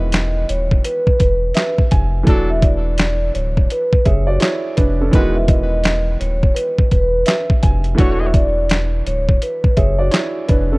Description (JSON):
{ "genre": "hip hop, boom-bap hip-hop", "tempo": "84 BPM", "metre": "4/4", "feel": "swing 62% on 16ths", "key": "E major", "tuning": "A4 = 439 Hz", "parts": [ { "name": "vibraphone with soft mallets", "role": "melody", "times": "0.0-10.1 s", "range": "B4 to E5", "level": "-22 LUFS", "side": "equal", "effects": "high-pass filter, low-pass filter" }, { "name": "warm upright piano", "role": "accompaniment", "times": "0.0-10.8 s", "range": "D#3 to G#5", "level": "-23 LUFS", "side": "right 2 dB", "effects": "high-pass filter, low-pass filter" }, { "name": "warm sub bass", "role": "bass", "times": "0.0-10.8 s", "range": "D1 to F#1", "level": "-19 LUFS", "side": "equal", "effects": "none" }, { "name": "boom bap sampler-style drum kit", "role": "drums", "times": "0.1-10.7 s", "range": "handclaps, hi-hat, kick drum, snare drum", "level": "-15 LUFS", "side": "equal", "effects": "none" }, { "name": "mellow trumpet section", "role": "stabs", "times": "2.3-8.3 s", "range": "F#3 to C#5", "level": "-29 LUFS", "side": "left 1 dB", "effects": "high-pass filter, low-pass filter, ping-pong delay" } ], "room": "studio ambience", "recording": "worn, warbling old tape, cassette tape, warbly pitch drift", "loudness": "-14 LUFS", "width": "side -25 dB against mid", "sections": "0.0-10.8 A section", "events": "none", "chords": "0.0 Emaj9; 2.3 D; 5.1 Emaj9; 8.0 D" }